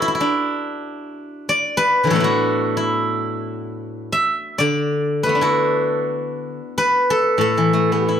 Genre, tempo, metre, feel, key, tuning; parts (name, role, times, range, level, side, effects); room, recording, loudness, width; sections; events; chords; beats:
chinese traditional, Chinese solo plucked strings; 92 BPM; 2/4; rubato; A zhi mode; A4 = 440 Hz
steel-string zither; solo; 0.0-8.2 s; A2 to E5; -17 LUFS; equal
moderate studio reverb, RT60 0.5 s; heard from further back in the room; -17 LUFS; side -8 dB against mid
0.0-8.2 A section
0.19 | 0.83 1.47 | 2.12 2.78 | 3.46 4.13 | 4.78 5.43 | 6.09 6.74 | 7.40 8.07